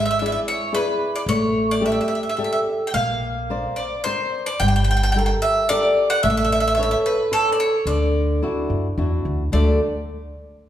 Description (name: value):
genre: italian folk, Italian serenade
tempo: 110 BPM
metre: 3/4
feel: rubato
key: D major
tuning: A4 = 440 Hz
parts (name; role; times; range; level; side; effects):
- bowl-back mandolin; melody; 0.0-9.8 s; A4 to G5; -22 LUFS; right 1 dB; none
- flamenco guitar; accompaniment; 0.0-9.8 s; D3 to D5; -23 LUFS; left 1 dB; none
- upright bass; bass; 0.0-9.8 s; G1 to F#2; -23 LUFS; equal; none
room: wet recital hall reverb, RT60 1.5 s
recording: recorded in a church or concert hall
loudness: -18 LUFS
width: side -11 dB against mid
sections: 0.0-9.5 A section; 9.5-10.7 B section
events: none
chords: 0.0 E7/G#; 1.3 A7sus4; 2.9 Bbadd9; 4.6 Gmadd9; 6.2 Aadd9; 7.9 Dadd9; 9.5 D